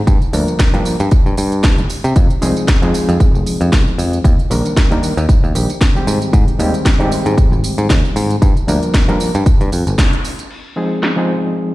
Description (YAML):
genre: nu-disco, nu disco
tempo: 115 BPM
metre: 4/4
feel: swing 55% on 16ths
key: F dorian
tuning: A4 = 440 Hz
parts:
  - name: overdriven reed electric piano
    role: accompaniment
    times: 0.0-11.7 s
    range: Eb3 to Bb4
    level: -18 LUFS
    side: equal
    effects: fast tremolo, sidechain pumping, slapback echo
  - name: picked electric bass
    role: bass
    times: 0.1-10.0 s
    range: F1 to C3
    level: -16 LUFS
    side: equal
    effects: sidechain pumping
  - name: electronic kick drum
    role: drums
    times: 0.1-10.1 s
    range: none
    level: -13 LUFS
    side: equal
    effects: none
  - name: house drum kit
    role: drums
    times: 0.1-11.1 s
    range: crash cymbal, hi-hat, snare drum, tambourine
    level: -22 LUFS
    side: equal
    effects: low-pass filter on hats, low-pass filter on perc, low-pass filter on snare, low-pass filter on cymbals
room: little or no reverb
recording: played on a big sound system in a bare room, stone room reverb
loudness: -12 LUFS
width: side -18 dB against mid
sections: 0.0-10.5 A section; 10.5-11.7 B section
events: band accent 10.0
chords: 0.1 Gm7; 2.2 Fm7; 4.2 Ebmaj7; 6.1 Abmaj7; 8.4 Gm7; 10.5 Fm7